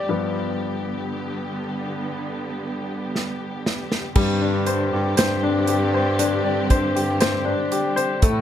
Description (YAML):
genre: pop ballad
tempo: 59 BPM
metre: 4/4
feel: straight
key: unclear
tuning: A4 = 440 Hz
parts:
  - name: clear baby grand piano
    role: accompaniment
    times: 0.0-8.4 s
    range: G2 to F5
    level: -24 LUFS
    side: left 3 dB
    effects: none
  - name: warm symphonic string section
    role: sustained chords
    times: 0.0-8.4 s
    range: C3 to G4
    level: -27 LUFS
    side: right 1 dB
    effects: none
  - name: natural country drum kit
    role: drums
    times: 3.2-8.4 s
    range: crash cymbal, hi-hat, kick drum, snare drum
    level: -22 LUFS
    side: right 1 dB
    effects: none
  - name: clear bass clarinet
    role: bass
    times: 4.2-8.4 s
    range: G2 to A2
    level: -25 LUFS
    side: equal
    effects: none
room: small room ambience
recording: none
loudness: -20 LUFS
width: side -10 dB against mid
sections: 0.0-4.2 A section; 4.2-8.4 B section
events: grand piano solo 0.0-4.2; drum fill 3.1-4.2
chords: 0.1 G7; 4.2 Gsus4